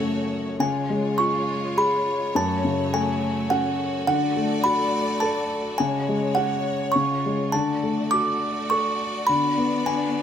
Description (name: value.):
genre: children's music, lullaby.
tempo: 104 BPM.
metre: 3/4.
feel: rubato.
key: unclear.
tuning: A4 = 440 Hz.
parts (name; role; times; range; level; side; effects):
felt-muted upright piano; accompaniment; 0.0-10.2 s; F#2 to A4; -25 LUFS; left 2 dB; none.
clear studio string section; sustained chords; 0.0-10.2 s; D3 to D5; -30 LUFS; left 1 dB; none.
music box; melody; 0.6-10.2 s; F#5 to D6; -24 LUFS; right 2 dB; none.
room: moderate small room ambience, RT60 0.5 s.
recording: faint mains hum.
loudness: -21 LUFS.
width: side -9 dB against mid.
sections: 0.6-10.2 A section.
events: none.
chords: 0.0 F#m; 0.6 C#; 2.4 F#m; 4.1 D; 5.8 C#sus4; 6.9 C#; 7.5 D; 9.3 Bm/D.